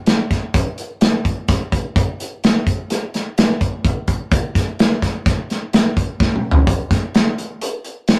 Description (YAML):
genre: rock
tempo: 127 BPM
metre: 5/4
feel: straight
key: none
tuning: none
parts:
  - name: loose indie drum kit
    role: drums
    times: 0.1-8.2 s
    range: hi-hat, kick drum, snare drum, toms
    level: -18 LUFS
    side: equal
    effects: none
room: moderate small room reverb, RT60 0.5 s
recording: rough rehearsal-room recording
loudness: -18 LUFS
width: mono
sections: 0.0-6.7 A section; 6.7-8.2 B section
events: drum fill 6.2-6.7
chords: none